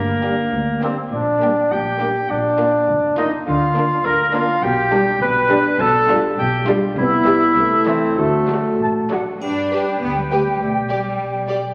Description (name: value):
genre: cinematic, playful, whimsical film cue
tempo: 102 BPM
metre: 2/4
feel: straight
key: G major from 4.6 s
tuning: A4 = 440 Hz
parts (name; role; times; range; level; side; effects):
- mellow cor anglais; second line; 0.0-11.7 s; A4 to A5; -23 LUFS; equal; none
- warm clarinet; second line; 0.0-11.7 s; A3 to B4; -24 LUFS; equal; none
- clear studio cello section; bass; 0.0-11.5 s; D2 to D4; -28 LUFS; equal; none
- warm studio double bass section; bass; 0.0-11.7 s; F1 to G2; -31 LUFS; equal; none
- rich studio violin section; melody; 0.2-11.6 s; D4 to D5; -34 LUFS; equal; none
- clear studio violin section; second line; 0.2-11.6 s; A3 to G4; -34 LUFS; equal; none
- rich studio viola section; accompaniment; 0.2-11.6 s; E3 to G4; -27 LUFS; equal; none
- dark French horn section; sustained chords; 0.2-11.6 s; G3 to D5; -27 LUFS; equal; none
- small flute group; second line; 8.8-11.7 s; F#5 to A5; -27 LUFS; equal; none
- triangle; percussion; 9.4-10.6 s; none; -43 LUFS; equal; none
room: wet scoring stage reverb, RT60 1.7 s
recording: none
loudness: -18 LUFS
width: mono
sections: 0.0-9.4 A section; 9.4-11.7 B section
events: none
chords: 0.0 Gm; 1.1 Gm/Bb; 2.3 Bb; 3.5 Bb/D; 4.6 G/B; 5.8 G7/B; 7.0 Cmaj7; 7.6 Am/C; 8.2 D; 9.4 G; 10.6 G/B